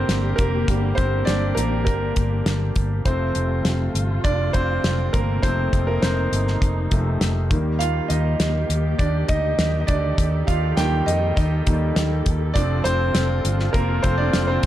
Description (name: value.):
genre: piano-driven pop.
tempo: 101 BPM.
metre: 4/4.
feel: straight.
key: unclear.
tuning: A4 = 439 Hz.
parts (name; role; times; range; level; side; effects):
clear grand piano; accompaniment; 0.0-14.7 s; C3 to G5; -24 LUFS; right 1 dB; plate reverb.
muted studio string section; sustained chords; 0.0-14.7 s; C3 to A4; -29 LUFS; left 1 dB; none.
fingered electric bass; bass; 0.0-14.7 s; F1 to F2; -23 LUFS; equal; none.
damped 70s drum kit; drums; 0.1-14.7 s; hi-hat, kick drum, snare drum; -22 LUFS; equal; none.
room: moderate studio reverb, RT60 0.8 s.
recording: dark, warm production.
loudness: -18 LUFS.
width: side -12 dB against mid.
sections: 0.0-14.7 A section.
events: grand piano solo 0.0-14.7.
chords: 0.0 Gm; 3.1 F; 7.5 Eb; 12.6 F.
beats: 0.09 | 0.68 1.28 1.87 2.46 | 3.06 3.65 4.25 4.84 | 5.43 6.03 6.62 7.21 | 7.81 8.40 8.99 9.59 | 10.18 10.78 11.37 11.96 | 12.56 13.15 13.74 14.34.